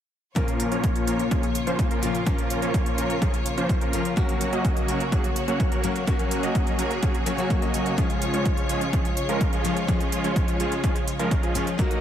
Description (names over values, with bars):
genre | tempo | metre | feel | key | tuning
EDM, festival progressive house | 126 BPM | 4/4 | straight | Bb minor | A4 = 440 Hz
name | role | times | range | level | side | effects
picked steel-string acoustic guitar | accompaniment | 0.3-12.0 s | Bb2 to Gb4 | -30 LUFS | left 6 dB | sidechain pumping, digital delay
clear studio string section | sustained chords | 0.4-12.0 s | Db3 to Eb5 | -32 LUFS | equal | sidechain pumping
supersaw chords | riff | 0.4-12.0 s | F3 to Eb5 | -27 LUFS | right 2 dB | sidechain pumping, low-pass filter, digital delay
electronic hi-hat | drums | 0.4-12.0 s | none | -36 LUFS | right 3 dB | overdrive
electronic kick drum | drums | 0.4-11.9 s | none | -25 LUFS | equal | overdrive
room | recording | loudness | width
light reverb, digital ambience | none | -22 LUFS | side -10 dB against mid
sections
0.4-12.0 A section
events
none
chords
0.4 Bbm; 4.2 Gb; 8.0 Db